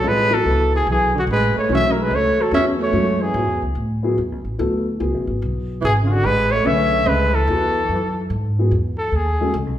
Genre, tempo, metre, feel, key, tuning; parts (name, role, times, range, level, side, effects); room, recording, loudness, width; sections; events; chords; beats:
modal jazz; 145 BPM; 3/4; swing 66% on 8ths; A major; A4 = 440 Hz
warm trumpet; melody; 0.0-3.6, 5.8-9.6 s; F4 to E5; -19 LUFS; equal
breathy tenor saxophone; second line; 0.0-3.6, 5.8-8.3 s; C#3 to C#4; -23 LUFS; right 3 dB
dark upright piano; accompaniment; 0.0-9.5 s; D3 to B4; -24 LUFS; left 2 dB
upright bass; bass; 0.0-9.8 s; G#1 to A2; -22 LUFS; equal
wet large studio reverb, RT60 1.3 s; band playing live in one room; -16 LUFS; side -11 dB against mid
0.0-8.7 A section; 8.7-9.8 B section
trumpet solo 8.7-9.8
0.0 Amaj9; 8.7 Emaj7
| 0.03 0.44 0.86 | 1.27 1.68 2.10 | 2.51 2.92 3.34 | 3.75 4.17 4.58 | 4.99 5.41 5.82 | 6.23 6.65 7.06 | 7.47 7.89 8.30 | 8.71 9.13 9.54